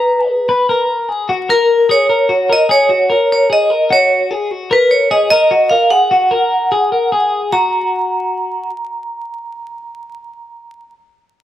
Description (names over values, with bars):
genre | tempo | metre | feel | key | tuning
indie pop | 149 BPM | 4/4 | straight | F# major | A4 = 440 Hz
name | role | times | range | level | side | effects
vibraphone with hard mallets | melody | 0.0-10.9 s | A#4 to A#5 | -13 LUFS | right 1 dB | none
twelve-string electric guitar | arpeggios | 0.0-8.7 s | F#4 to A#5 | -16 LUFS | left 3 dB | none
room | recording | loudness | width
moderate large studio reverb, RT60 0.9 s, studio ambience | vinyl crackle | -11 LUFS | side -12 dB against mid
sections
0.0-7.5 A section; 7.5-10.8 B section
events
none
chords
0.0 G#m; 0.9 F#add9; 7.5 N.C.